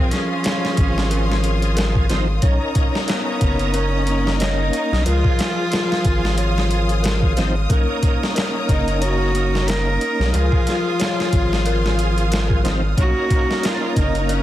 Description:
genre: trip hop.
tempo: 91 BPM.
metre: 4/4.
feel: swing 56% on 16ths.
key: unclear.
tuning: A4 = 440 Hz.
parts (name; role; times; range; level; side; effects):
warm cello; melody; 0.0-14.4 s; B3 to A#4; -24 LUFS; equal; tape echo.
bright tonewheel organ; accompaniment; 0.0-14.4 s; F3 to A#4; -24 LUFS; equal; chorus vibrato, slow rotary speaker, harmonic tremolo, tape echo.
clear studio string section; sustained chords; 0.0-14.4 s; C#5 to Eb6; -29 LUFS; left 2 dB; none.
dark detuned synth bell; arpeggios; 0.0-14.4 s; Bb4 to Db5; -30 LUFS; left 4 dB; chorus, phaser, tape echo.
wind-like tuned noise texture; texture; 0.1-14.4 s; F5; -34 LUFS; right 10 dB; built-in reverb.
boom bap sampler-style drum kit; drums; 0.1-14.4 s; hi-hat, kick drum, snare drum; -21 LUFS; equal; none.
round analog bass; bass; 0.8-14.4 s; F#1 to Db2; -20 LUFS; equal; none.
room: digital ambience.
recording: dense, heavily limited modern master, vinyl crackle.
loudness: -16 LUFS.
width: side -13 dB against mid.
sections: 0.0-14.4 A section.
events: none.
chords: 0.0 Dbmaj9; 2.4 Bmaj9; 5.1 Dbmaj9; 7.7 Bmaj9 (rootless); 10.3 Dbmaj9; 13.0 Bmaj9 (rootless).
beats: 0.45 1.11 1.76 | 2.42 3.08 3.74 4.40 | 5.06 5.72 6.38 7.04 | 7.70 8.36 9.02 9.68 | 10.34 11.00 11.66 12.31 | 12.97 13.63 14.29.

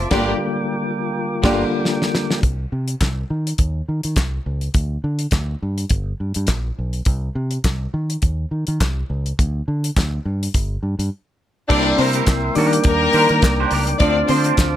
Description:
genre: disco.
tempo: 104 BPM.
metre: 4/4.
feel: swing 56% on 16ths.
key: unclear.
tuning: A4 = 441 Hz.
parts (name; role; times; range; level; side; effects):
warm studio string section; second line; 0.0-1.6, 11.7-14.4 s; Bb3 to D5; -20 LUFS; left 1 dB; none.
clean electric guitar; accompaniment; 0.0-1.6, 11.7-14.6 s; F3 to C5; -25 LUFS; right 7 dB; none.
tine electric piano; accompaniment; 0.0-2.5, 11.7-14.8 s; D3 to C5; -22 LUFS; left 2 dB; overdrive, fast stereo tremolo.
tonewheel organ; sustained chords; 0.0-2.4, 11.7-14.8 s; F4 to D6; -24 LUFS; right 1 dB; overdrive, slow rotary speaker.
fingered electric bass; bass; 0.0-14.8 s; G1 to Eb3; -22 LUFS; equal; none.
damped 70s drum kit; drums; 0.1-14.7 s; crash cymbal, hi-hat, kick drum, snare drum; -20 LUFS; equal; none.
group handclap; percussion; 3.0-14.7 s; none; -29 LUFS; left 3 dB; none.
room: light reverb, studio ambience.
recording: none.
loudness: -17 LUFS.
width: side -12 dB against mid.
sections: 0.0-2.4 A section; 2.4-11.7 B section; 11.7-14.8 C section.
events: band accent 0.1-2.4; drum fill 1.3-2.4; break 11.1-11.7.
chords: 0.1 Gm7; 2.4 N.C.; 3.3 Cm; 4.8 N.C.; 5.6 G; 7.1 N.C.; 7.9 Cm; 9.4 N.C.; 11.7 C7; 12.6 Ebmaj7; 14.0 Dm7.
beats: | 0.12 0.70 1.28 1.86 | 2.44 3.01 3.59 4.17 | 4.75 5.33 5.91 6.49 | 7.07 7.65 8.23 8.81 | 9.39 9.96 10.54 11.12 | 11.70 12.28 12.85 13.43 | 14.01 14.58.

